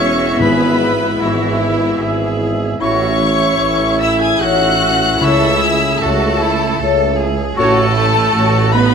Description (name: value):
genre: classical, slow romantic movement for symphony orchestra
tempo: 75 BPM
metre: 3/4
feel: rubato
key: unclear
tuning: A4 = 441 Hz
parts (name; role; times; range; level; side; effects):
- rich chamber violin section; melody; 0.0-8.9 s; E5 to G#6; -20 LUFS; left 7 dB; none
- clear chamber violin section; second line; 0.0-8.9 s; E4 to G#5; -23 LUFS; equal; none
- warm oboe; second line; 0.0-8.9 s; E4 to G#5; -24 LUFS; right 3 dB; none
- rich chamber viola section; accompaniment; 0.0-8.9 s; E3 to G#4; -20 LUFS; right 3 dB; none
- mellow French horn section; sustained chords; 0.0-7.9 s; B3 to F#4; -22 LUFS; left 4 dB; none
- mellow trombone section; sustained chords; 0.0-7.9 s; A2 to A3; -26 LUFS; right 1 dB; none
- concert harp; arpeggios; 0.0-8.9 s; G#2 to G#5; -23 LUFS; left 11 dB; none
- clear trumpet section; stabs; 0.0-7.9 s; C#5 to E5; -22 LUFS; right 1 dB; none
- rich chamber cello section; bass; 0.0-8.9 s; C#4 to A4; -24 LUFS; right 4 dB; none
- rich studio double bass section; bass; 0.0-8.9 s; E1 to C#2; -21 LUFS; right 3 dB; none
- warm tuba; bass; 0.0-8.9 s; E1 to C#2; -22 LUFS; right 4 dB; none
- mellow silver concert flute; second line; 0.4-7.9 s; C#6 to B6; -24 LUFS; left 2 dB; none
- warm clarinet; second line; 0.4-7.9 s; E4 to F#4; -24 LUFS; left 2 dB; none
- timpani; percussion; 0.4-1.6, 5.2-6.4 s; G#2 to C#3; -25 LUFS; equal; none
room: moderate scoring stage reverb, RT60 1.9 s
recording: close, detailed microphones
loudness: -12 LUFS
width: side -6 dB against mid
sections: 0.0-8.9 A section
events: none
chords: 0.4 E/G#; 2.8 A; 5.2 A/C#; 7.6 F#m/A